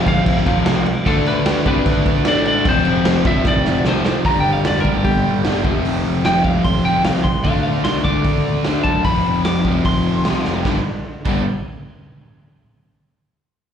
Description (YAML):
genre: punk rock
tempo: 150 BPM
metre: 4/4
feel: straight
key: unclear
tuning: A4 = 440 Hz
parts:
  - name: lightly driven lead guitar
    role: melody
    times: 0.0-10.6 s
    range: G4 to D6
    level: -22 LUFS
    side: equal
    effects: slapback echo, ping-pong delay
  - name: crunchy overdriven guitar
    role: riff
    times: 0.0-11.4 s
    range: F2 to D4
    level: -20 LUFS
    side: left 8 dB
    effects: slapback echo
  - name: tight distorted guitar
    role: riff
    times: 0.0-11.4 s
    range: F2 to D4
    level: -24 LUFS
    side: right 13 dB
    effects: distortion, slapback echo
  - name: fuzz picked electric bass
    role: bass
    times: 0.1-11.4 s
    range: F1 to C3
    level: -23 LUFS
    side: right 1 dB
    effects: overdrive
  - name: raw garage drum kit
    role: drums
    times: 0.1-11.3 s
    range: crash cymbal, hi-hat, kick drum, snare drum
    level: -20 LUFS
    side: right 1 dB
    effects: none
room: little or no reverb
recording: live gig heard through the venue's PA, club reverb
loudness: -15 LUFS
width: side -8 dB against mid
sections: 0.0-4.2 A section; 4.2-10.7 B section; 10.7-12.3 C section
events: drum fill 3.4-4.2, 10.5; lead electric guitar solo 4.2-10.7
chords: 0.0 F5; 1.1 D5; 2.7 F5; 4.2 G5; 5.6 F5; 7.4 D5; 9.1 F5; 10.7 G5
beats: 0.27 0.66 | 1.06 1.46 1.86 2.25 | 2.65 3.05 3.45 3.85 | 4.25 4.65 5.05 5.45 | 5.85 6.25 6.65 7.05 | 7.45 7.85 8.25 8.65 | 9.05 9.45 9.85 10.25 | 10.65 11.06